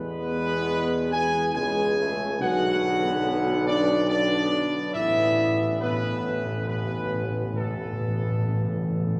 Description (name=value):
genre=classical, ceremonial fanfare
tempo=70 BPM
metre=3/4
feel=straight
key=unclear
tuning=A4 = 440 Hz
part: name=dark trumpet section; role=melody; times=0.0-9.2 s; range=A4 to G#5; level=-30 LUFS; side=equal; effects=none
part: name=mellow French horn section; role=sustained chords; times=0.0-9.2 s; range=A3 to G#4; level=-32 LUFS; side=equal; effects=none
part: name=warm trombone section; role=sustained chords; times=0.0-9.2 s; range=B2 to B3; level=-36 LUFS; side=equal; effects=none
part: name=warm tuba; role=bass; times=0.0-9.2 s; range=A1 to E2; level=-31 LUFS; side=equal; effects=none
part: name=timpani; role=percussion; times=4.9-9.2 s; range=A2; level=-31 LUFS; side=equal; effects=none
room=wet church reverb, RT60 4.0 s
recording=recorded in a church or concert hall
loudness=-25 LUFS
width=mono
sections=0.0-9.2 A section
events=timpani fill 4.9-9.2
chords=0.0 E; 2.4 Bm; 4.9 Aadd9